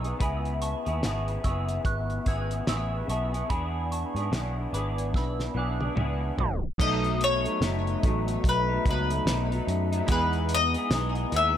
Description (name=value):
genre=indie pop, bedroom pop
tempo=73 BPM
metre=4/4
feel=swing 60% on 16ths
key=E major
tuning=A4 = 436 Hz
part: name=soft synth bell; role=second line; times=0.0-6.6 s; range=G#5 to G#6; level=-37 LUFS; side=right 6 dB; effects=phaser, analog chorus, tape echo
part: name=electric guitar through a small old amp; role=accompaniment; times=0.0-11.6 s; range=B2 to G#4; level=-31 LUFS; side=left 2 dB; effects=ensemble chorus, warbly pitch drift
part: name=vintage muted picked electric bass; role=bass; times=0.0-11.6 s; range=F#1 to G#2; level=-30 LUFS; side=equal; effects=none
part: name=cloth-damped thuddy drum kit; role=drums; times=0.0-11.6 s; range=crash cymbal, hi-hat, kick drum, snare drum, toms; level=-29 LUFS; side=equal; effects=none
part: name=bowl-back mandolin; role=melody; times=6.8-11.6 s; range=B4 to E5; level=-27 LUFS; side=left 3 dB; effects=lush chorus, tape echo
part: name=chorused retro synth keys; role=accompaniment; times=6.8-11.6 s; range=F#3 to A4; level=-34 LUFS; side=right 8 dB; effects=none
room=light reverb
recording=tape stop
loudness=-25 LUFS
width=side -10 dB against mid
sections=0.0-6.8 A section; 6.8-11.6 B section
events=drum fill 5.2-6.8; tape stop 6.4-6.8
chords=0.2 C#m7; 3.5 E7; 6.8 B7; 10.1 Emaj7